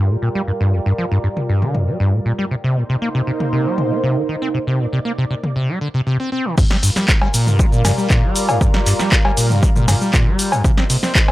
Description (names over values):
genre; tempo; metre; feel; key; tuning
acid house; 118 BPM; 4/4; straight; G minor; A4 = 440 Hz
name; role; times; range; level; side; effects
lush unison pad; sustained chords; 0.0-11.3 s; G3 to D5; -26 LUFS; right 1 dB; chorus, phaser, sidechain pumping
acid bass, saw; riff; 0.0-11.3 s; F2 to C4; -18 LUFS; equal; overdrive, wide subtle chorus, cassette tape, sidechain pumping
warbly tape-like pad; texture; 0.0-11.3 s; Eb4 to G5; -27 LUFS; right 2 dB; chorus, built-in reverb, phaser, sidechain pumping
punchy analog drum machine; drums; 1.4-11.3 s; cabasa, cowbell, crash cymbal, handclaps, hi-hat, snare drum, toms; -20 LUFS; left 1 dB; none
electronic kick drum; drums; 6.6-11.3 s; none; -15 LUFS; equal; none
room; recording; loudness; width
little or no reverb; dry, gritty hardware recording, transformer saturation; -15 LUFS; side -16 dB against mid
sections
0.0-6.6 A section; 6.6-11.3 B section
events
filter sweep on analog synth pad 0.0-6.6; drop 6.6-11.3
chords
0.0 Gm7; 2.5 Cm7; 6.6 Gm7; 10.6 Cm7